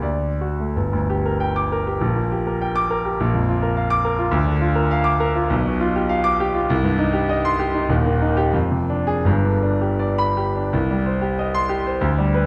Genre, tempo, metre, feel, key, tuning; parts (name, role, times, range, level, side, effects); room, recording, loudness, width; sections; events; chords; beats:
classical, romantic character piece for solo piano; 79-109 BPM; 2/4; rubato; G minor, C minor from 5.5 s; A4 = 439 Hz
clear concert grand piano; solo; 0.0-12.5 s; Eb1 to D6; -20 LUFS; equal
moderate recital hall reverb, RT60 1.5 s; -20 LUFS; mono
0.7-10.7 A section; 10.7-12.5 B section
0.0 D; 0.7 Gm; 2.0 Gm/Bb; 3.2 Bb; 4.3 Bb/D; 5.5 G7/B; 6.7 Cm; 7.9 Eb; 8.5 Dm7b5/F; 9.3 G; 10.7 Cm
0.02 | 0.75 1.39 | 2.00 2.60 | 3.21 3.78 | 4.34 4.91 | 5.50 6.10 | 6.70 7.30 | 7.90 8.53 | 9.25 10.00 | 10.73 11.39 | 12.03